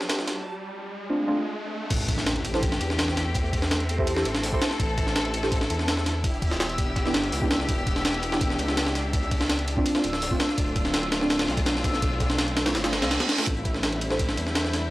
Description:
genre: drum and bass, jungle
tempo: 166 BPM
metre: 4/4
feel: straight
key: A minor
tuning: A4 = 440 Hz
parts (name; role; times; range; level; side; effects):
- rich studio string section; sustained chords; 0.0-14.9 s; G3 to A4; -32 LUFS; left 1 dB; none
- dark detuned saw bass; bass; 0.0-14.9 s; D1 to E2; -30 LUFS; equal; high-pass filter
- breakbeat sampler-style drum kit; drums; 0.0-14.8 s; crash cymbal, hi-hat, kick drum, ride cymbal, snare drum; -25 LUFS; equal; high-pass filter on cymbals, high-pass filter on kick, high-pass filter on snare, high-pass filter on hats
- riser, impact and reverse cymbal; sound effects; 0.0-3.4, 12.9-13.5 s; none; -33 LUFS; right 1 dB; none
- backwards swelling texture; texture; 0.0-14.9 s; A5 to G6; -38 LUFS; left 1 dB; built-in reverb
- crunchy breakbeat drum kit; drums; 0.1-14.8 s; hi-hat, snare drum; -37 LUFS; left 2 dB; none
- deep mellow chord stab; stabs; 1.1-14.2 s; A3 to C5; -30 LUFS; right 1 dB; chorus, dub echo
room: small room ambience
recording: dry, gritty hardware recording, transformer saturation, cassette tape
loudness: -23 LUFS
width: side -18 dB against mid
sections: 0.0-1.9 A section; 1.9-14.9 B section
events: build-up 0.0-1.9; riser 0.0-1.9; filter sweep on synth stab 0.0-1.9; break 0.5-1.9; drop 1.9-14.9; impact 1.9-3.4; reverse cymbal 12.9-13.5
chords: 0.0 Dm7; 1.9 Am7; 6.2 Em7; 9.9 Dm7; 13.5 Am7

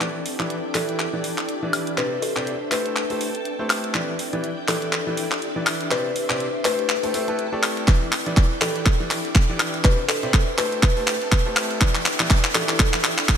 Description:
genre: piano house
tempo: 122 BPM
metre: 4/4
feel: swing 57% on 16ths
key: E minor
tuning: A4 = 440 Hz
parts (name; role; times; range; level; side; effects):
- string machine, violins; sustained chords; 0.0-13.4 s; E4 to A5; -33 LUFS; equal; ensemble chorus, sidechain pumping
- bright upright piano; riff; 0.0-13.1 s; C3 to D5; -29 LUFS; equal; sidechain pumping, low-pass filter, digital delay
- house drum kit; drums; 0.0-13.4 s; handclaps, hi-hat, woodblock; -23 LUFS; equal; none
- ethereal airy pad; texture; 0.0-13.4 s; D4 to E5; -33 LUFS; left 1 dB; ensemble chorus, built-in reverb, sidechain pumping
- kalimba; melody; 0.7-12.7 s; A4 to B4; -28 LUFS; left 2 dB; low-pass filter, digital delay
- electronic kick drum; drums; 7.9-13.4 s; none; -18 LUFS; equal; none
room: moderate lush hall reverb, RT60 2.2 s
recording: bright 1980s-style digital production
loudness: -19 LUFS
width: side -8 dB against mid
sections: 0.0-13.4 A section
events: build-up 0.0-13.4; drum fill 0.0-13.4; filter sweep on kalimba 0.0-13.4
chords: 0.0 Em7; 2.0 Cadd9; 2.7 Am7; 3.9 Em7; 5.9 Cadd9; 6.7 Am7; 7.9 Em7; 9.8 Cadd9; 10.6 Am7; 11.8 Em7

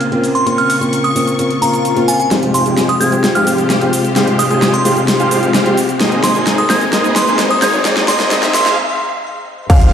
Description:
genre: EDM, festival progressive house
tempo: 130 BPM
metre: 4/4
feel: straight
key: F minor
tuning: A4 = 440 Hz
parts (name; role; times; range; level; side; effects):
- felt-muted upright piano; accompaniment; 0.0-8.8 s; Ab2 to Bb4; -18 LUFS; equal; sidechain pumping, digital delay
- clear symphonic string section; sustained chords; 0.0-9.7 s; C3 to Db6; -22 LUFS; left 2 dB; sidechain pumping, low-pass filter
- big-room dance drum kit; drums; 0.0-9.9 s; crash cymbal, hi-hat, shaker, snare drum; -18 LUFS; equal; none
- glassy synth bell; melody; 0.3-8.7 s; Ab5 to Ab6; -17 LUFS; right 1 dB; chorus, digital delay
- swell, riser and sub drop; sound effects; 1.6-9.9 s; none; -20 LUFS; left 1 dB; none
- dense compressed supersaw; riff; 2.3-9.9 s; Ab3 to Ab5; -18 LUFS; equal; sidechain pumping, low-pass filter, digital delay
- wide detuned saw bass; bass; 2.3-9.9 s; F1 to Ab1; -23 LUFS; left 1 dB; none
- dark concert grand piano; arpeggios; 9.7-9.9 s; F5; -18 LUFS; right 2 dB; sidechain pumping
- electronic kick drum; drums; 9.7-9.8 s; none; -9 LUFS; equal; none
room: moderate concert hall reverb, RT60 1.8 s, digital ambience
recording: played on a big sound system in a bare room, large studio reverb, high-pass filter, low-pass filter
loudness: -11 LUFS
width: side -8 dB against mid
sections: 0.0-2.3 A section; 2.3-9.7 B section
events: swell 1.6-2.3; build-up 2.3-9.7; drum fill 2.3-8.8; filter sweep on supersaw synth 2.3-9.7; filter sweep on string section 2.3-9.7; filter sweep 2.3-9.7; riser 5.3-8.8; break 8.8-9.7; impact 9.7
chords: 0.0 Bbmadd9; 2.3 Fmadd9; 6.0 Abadd9

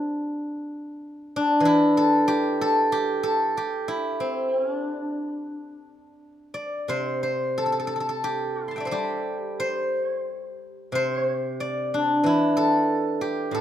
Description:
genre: chinese traditional, Chinese solo plucked strings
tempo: 90 BPM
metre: 4/4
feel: uneven beats, rubato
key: G zhi mode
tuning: A4 = 441 Hz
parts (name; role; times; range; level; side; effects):
- steel-string zither; solo; 0.0-13.6 s; A2 to C6; -22 LUFS; equal; none
room: moderate recital hall reverb, RT60 1.6 s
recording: minimal, uncompressed stereo recording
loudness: -22 LUFS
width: side -10 dB against mid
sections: 0.0-13.6 A section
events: none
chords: none

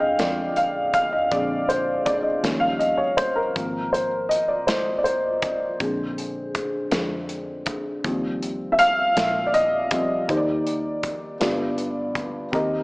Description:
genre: slow gospel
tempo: 54 BPM (dotted quarters)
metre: 6/8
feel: straight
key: Eb major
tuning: A4 = 440 Hz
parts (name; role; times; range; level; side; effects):
- dark upright piano; accompaniment; 0.0-12.8 s; G2 to G5; -21 LUFS; equal; none
- fingered electric bass; bass; 0.0-12.8 s; G1 to F2; -34 LUFS; equal; none
- modern studio drum kit; drums; 0.2-12.7 s; hi-hat, kick drum, snare drum; -29 LUFS; equal; none
room: moderate echo chamber reverb, RT60 2.3 s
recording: small speaker sound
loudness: -21 LUFS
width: side -25 dB against mid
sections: 0.0-10.3 A section; 10.3-12.8 B section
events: upright piano solo 0.0-10.3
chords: 0.0 Bb7; 2.4 Eb7; 3.6 Ab6; 5.8 Bb7; 8.0 Eb6; 10.3 Ebmaj7; 11.4 G7

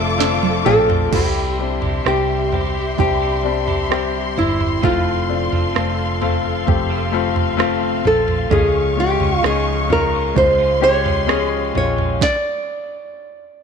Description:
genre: pop ballad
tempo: 65 BPM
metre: 4/4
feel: straight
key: F major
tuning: A4 = 439 Hz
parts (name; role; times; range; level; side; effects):
- nylon-string guitar; melody; 0.0-13.6 s; E4 to D5; -19 LUFS; right 2 dB; slapback echo
- warm baby grand piano; accompaniment; 0.0-12.2 s; C3 to E5; -22 LUFS; left 12 dB; none
- warm studio string section; sustained chords; 0.0-12.2 s; Ab3 to D6; -25 LUFS; left 2 dB; none
- twelve-string electric guitar; arpeggios; 0.0-12.2 s; F2 to G4; -29 LUFS; right 12 dB; none
- vintage muted fingered electric bass; bass; 0.0-12.2 s; F1 to Db2; -24 LUFS; right 1 dB; none
- smooth R&B drum kit; drums; 0.2-12.4 s; crash cymbal, kick drum, rim click, snare drum, toms; -22 LUFS; right 5 dB; overdrive
room: moderate echo chamber reverb, RT60 2.6 s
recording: 1960s-style stereo with parts hard left and right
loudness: -15 LUFS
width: side -6 dB against mid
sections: 0.0-1.1 A section; 1.1-13.6 B section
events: drum fill 0.2-1.1; stop 12.2-13.6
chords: 0.0 F6; 1.1 C; 4.8 F; 8.5 Db; 12.2 N.C.

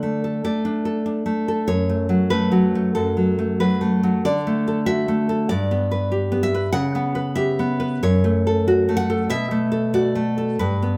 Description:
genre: romantic piece for solo classical guitar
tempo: 95 BPM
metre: 4/4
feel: rubato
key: unclear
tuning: A4 = 440 Hz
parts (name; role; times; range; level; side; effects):
- nylon-string guitar; solo; 0.0-11.0 s; F#2 to F#5; -21 LUFS; equal; none
room: moderate large studio reverb, RT60 1.1 s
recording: band playing live in one room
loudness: -21 LUFS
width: mono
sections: 0.0-11.0 A section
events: none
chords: 0.0 D; 1.7 F#madd11; 4.2 D; 5.5 G; 6.7 C#m7b5; 8.0 F#m; 9.3 Bm7

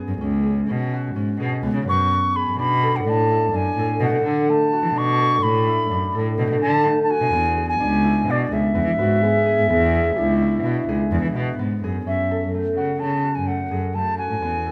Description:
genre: contemporary instrumental, chamber music in an uneven meter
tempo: 127 BPM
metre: 5/4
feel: straight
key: F# minor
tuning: A4 = 444 Hz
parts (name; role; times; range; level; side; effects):
- concert harp; arpeggios; 0.0-14.7 s; A3 to B4; -27 LUFS; equal; none
- warm cello; bass; 0.1-14.6 s; C#2 to E3; -25 LUFS; equal; none
- baroque flute; melody; 1.9-14.7 s; D5 to C#6; -24 LUFS; equal; none
- warm French horn; second line; 9.0-11.1 s; E4 to G#4; -27 LUFS; equal; none
room: light reverb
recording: none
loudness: -20 LUFS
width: mono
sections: 0.0-12.1 A section; 12.1-14.7 B section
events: none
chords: 0.0 C#7sus4; 2.6 Bm7; 7.3 E; 12.1 F#m9

